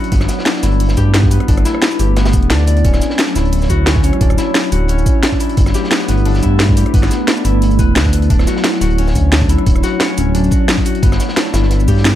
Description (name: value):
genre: liquid drum and bass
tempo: 176 BPM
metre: 4/4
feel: swing 53% on 16ths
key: unclear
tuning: A4 = 441 Hz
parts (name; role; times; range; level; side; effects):
- glassy FM pad; sustained chords; 0.0-12.2 s; F#3 to C#5; -20 LUFS; right 1 dB; ensemble chorus, built-in reverb, sidechain pumping
- concert harp; arpeggios; 0.0-12.2 s; B3 to D5; -20 LUFS; left 4 dB; digital delay
- crunchy breakbeat drum kit; drums; 0.0-12.1 s; hi-hat, snare drum; -26 LUFS; equal; high-pass filter on hats, high-pass filter on snare, high-pass filter on room
- drum and bass drum kit; drums; 0.0-12.1 s; hi-hat, rim click, shaker, snare drum; -18 LUFS; equal; overdrive
- smooth synth bass; bass; 0.1-12.2 s; D1 to G2; -14 LUFS; equal; none
- electronic kick drum; drums; 0.1-12.0 s; none; -15 LUFS; equal; none
room: light reverb, small room ambience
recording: dark, warm production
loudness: -11 LUFS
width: side -12 dB against mid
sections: 0.0-12.2 A section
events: kick drops out 2.5-2.8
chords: 0.1 G6; 2.8 Dmaj9; 5.6 G6; 8.3 Dmaj9; 11.0 G6